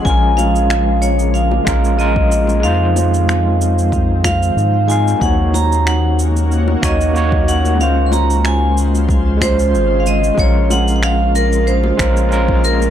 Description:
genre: sunset chillout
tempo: 93 BPM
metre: 4/4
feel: swing 54% on 16ths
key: unclear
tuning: A4 = 440 Hz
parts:
  - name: vibraphone with hard mallets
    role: melody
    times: 0.0-12.9 s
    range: Bb4 to C6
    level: -18 LUFS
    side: right 1 dB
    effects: ping-pong delay
  - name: overdriven tine electric piano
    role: accompaniment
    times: 0.0-12.9 s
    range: Ab3 to F5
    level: -20 LUFS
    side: moving between left 4 dB and right 3 dB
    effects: fast tremolo, auto-pan
  - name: shimmering ambient pad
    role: sustained chords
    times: 0.0-12.9 s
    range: Db3 to C5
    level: -23 LUFS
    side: equal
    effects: chorus, built-in reverb
  - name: round analog bass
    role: bass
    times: 0.1-12.9 s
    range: Ab1 to Ab2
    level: -16 LUFS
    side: equal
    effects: none
  - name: electronic cabasa and finger snaps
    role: drums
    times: 0.1-12.9 s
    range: none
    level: -25 LUFS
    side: right 1 dB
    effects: overdrive
  - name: electronic kick drum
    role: drums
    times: 0.1-12.6 s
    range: none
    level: -18 LUFS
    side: equal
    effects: overdrive
  - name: bongos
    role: percussion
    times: 0.4-12.9 s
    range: none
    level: -27 LUFS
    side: left 5 dB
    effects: none
room: light reverb, digital ambience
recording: dark, warm production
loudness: -12 LUFS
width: side -10 dB against mid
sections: 0.0-12.9 A section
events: none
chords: 0.1 Bbm7; 2.6 Fm7; 5.2 Ebm7; 7.8 Dbmaj7; 10.4 Bbm7

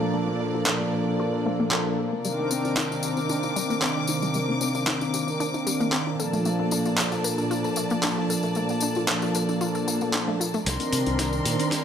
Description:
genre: nu-disco, nu disco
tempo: 114 BPM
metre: 4/4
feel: straight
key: Bb major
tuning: A4 = 440 Hz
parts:
  - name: warm analog pad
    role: accompaniment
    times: 0.0-11.8 s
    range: Eb3 to Bb4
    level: -26 LUFS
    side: right 1 dB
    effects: chorus, sidechain pumping, digital delay
  - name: warm studio string section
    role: sustained chords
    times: 0.0-11.8 s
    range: Bb2 to D6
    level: -31 LUFS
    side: left 1 dB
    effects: sidechain pumping
  - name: wide unison pluck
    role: arpeggios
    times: 0.0-11.8 s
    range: G3 to Bb4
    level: -31 LUFS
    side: left 2 dB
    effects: sidechain pumping, dub echo
  - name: dusty soul sampler-style drum kit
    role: drums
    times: 0.7-11.8 s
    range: handclaps, hi-hat, snare drum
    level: -27 LUFS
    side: equal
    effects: overdrive, high-pass filter on snare, high-pass filter on hats, high-pass filter on room
  - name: tambourine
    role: percussion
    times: 2.2-11.8 s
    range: none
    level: -33 LUFS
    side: left 5 dB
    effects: none
  - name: fingered electric bass with an envelope filter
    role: bass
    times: 10.7-11.6 s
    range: C2 to C3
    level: -29 LUFS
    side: right 1 dB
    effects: none
  - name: kick drum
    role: drums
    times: 10.7-11.8 s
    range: none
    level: -33 LUFS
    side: right 1 dB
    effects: high-pass filter on kick, high-pass filter on snare, high-pass filter on room
room: light reverb, studio ambience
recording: none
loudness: -23 LUFS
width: side -8 dB against mid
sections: 0.0-10.7 A section; 10.7-11.8 B section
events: filter sweep on synth arpeggio sound 0.0-10.7; build-up 10.7-11.8; drum fill 10.7-11.8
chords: 0.0 Bbmaj7; 2.2 Cm9; 6.2 Bbmaj7; 10.7 Cm9

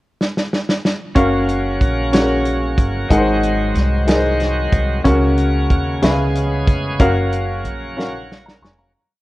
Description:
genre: slow gospel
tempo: 62 BPM (dotted quarters)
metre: 6/8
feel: straight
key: F# major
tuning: A4 = 440 Hz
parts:
  - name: warm soul drum kit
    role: drums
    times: 0.2-8.8 s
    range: hi-hat, kick drum, snare drum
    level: -18 LUFS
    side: equal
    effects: none
  - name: bright tonewheel organ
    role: sustained chords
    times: 1.1-8.9 s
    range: C#3 to G#4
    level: -25 LUFS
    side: right 2 dB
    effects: slow rotary speaker, overdrive
  - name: warm upright piano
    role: accompaniment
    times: 1.2-9.1 s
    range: G#2 to C#6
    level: -18 LUFS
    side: left 1 dB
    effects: none
  - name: upright bass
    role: bass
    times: 1.2-8.9 s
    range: E#1 to D#2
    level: -20 LUFS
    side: equal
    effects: none
room: light reverb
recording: worn, warbling old tape, cassette tape, warbly pitch drift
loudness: -15 LUFS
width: side -18 dB against mid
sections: 0.0-1.2 pickup bar; 1.2-8.9 A section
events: drum fill 0.2-1.2, 8.0-8.9; fade-out 7.0-8.9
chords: 0.0 N.C.; 1.2 F#maj7; 3.1 G#7; 5.1 F#/C#; 6.0 C#7; 7.0 F#maj7

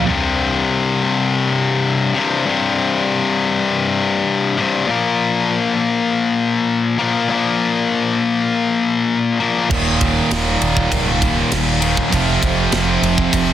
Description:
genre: heavy metal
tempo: 99 BPM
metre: 4/4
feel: straight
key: C minor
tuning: A4 = 440 Hz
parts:
  - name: thick fuzz guitar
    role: riff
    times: 0.0, 9.7-13.5 s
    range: Eb2 to F3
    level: -22 LUFS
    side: right 5 dB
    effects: distortion
  - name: tight distorted guitar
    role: riff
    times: 0.0-13.5 s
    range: C2 to Bb3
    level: -16 LUFS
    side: left 4 dB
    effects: distortion
  - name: tight distorted guitar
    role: riff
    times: 0.0, 9.7-13.5 s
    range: Eb2 to F3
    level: -22 LUFS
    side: right 13 dB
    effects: distortion
  - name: growling picked electric bass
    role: bass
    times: 9.7-13.5 s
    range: Db1 to F1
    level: -22 LUFS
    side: right 2 dB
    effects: overdrive
  - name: tight metal drum kit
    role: drums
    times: 9.7-13.5 s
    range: crash cymbal, kick drum, ride cymbal, snare drum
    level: -21 LUFS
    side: right 1 dB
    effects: none
room: little or no reverb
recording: dense, heavily limited modern master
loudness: -15 LUFS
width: side -11 dB against mid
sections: 0.0-13.5 A section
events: none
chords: 0.0 C5; 4.9 Bb5; 9.7 Eb5; 12.1 F5

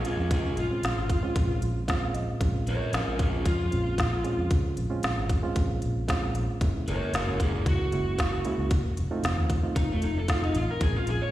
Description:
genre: straight-eighth soul blues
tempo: 114 BPM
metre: 4/4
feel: straight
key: Bb minor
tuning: A4 = 440 Hz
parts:
  - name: overdriven slide guitar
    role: melody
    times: 0.0-11.3 s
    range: A3 to Db5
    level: -31 LUFS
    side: left 1 dB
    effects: slapback echo, digital delay
  - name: reed electric piano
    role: accompaniment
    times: 0.0-11.3 s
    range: Ab3 to F5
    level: -33 LUFS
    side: right 3 dB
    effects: none
  - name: vintage muted fingered electric bass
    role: bass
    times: 0.0-11.2 s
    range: F1 to F2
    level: -29 LUFS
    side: equal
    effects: none
  - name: organic electronic drum kit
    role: drums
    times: 0.0-11.2 s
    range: hi-hat, kick drum, snare drum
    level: -28 LUFS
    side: equal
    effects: none
room: light reverb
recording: live gig heard through the venue's PA, recital hall reverb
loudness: -25 LUFS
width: side -14 dB against mid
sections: 0.0-11.3 A section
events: electric slide guitar solo 0.0-11.3; reed electric piano fill 1.6-2.4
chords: 0.0 Bbm9; 6.6 Gb7; 8.7 F7; 10.8 Bbm9

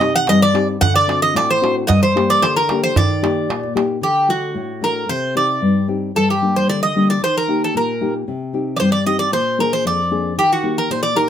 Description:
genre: greek folk, Greek bouzouki band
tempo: 113 BPM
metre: 2/4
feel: straight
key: D phrygian dominant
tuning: A4 = 440 Hz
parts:
  - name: Greek bouzouki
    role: melody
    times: 0.0-11.3 s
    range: F#4 to F#5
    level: -17 LUFS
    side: right 1 dB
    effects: none
  - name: nylon-string guitar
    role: accompaniment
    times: 0.0-11.3 s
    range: F2 to Ab4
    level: -19 LUFS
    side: left 3 dB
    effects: none
  - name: darbuka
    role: percussion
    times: 0.0-3.9 s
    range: none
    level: -20 LUFS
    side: right 3 dB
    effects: none
room: light reverb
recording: none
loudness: -15 LUFS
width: side -9 dB against mid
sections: 0.0-4.0 A section; 4.0-11.3 B section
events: speeding up 0.0-11.3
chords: 0.0 Cm; 0.8 D7; 1.9 Gm; 3.0 Eb; 4.0 D; 5.1 Cm; 6.2 Gm; 7.2 Eb; 8.3 Cm; 9.3 Bb7; 10.4 Eb

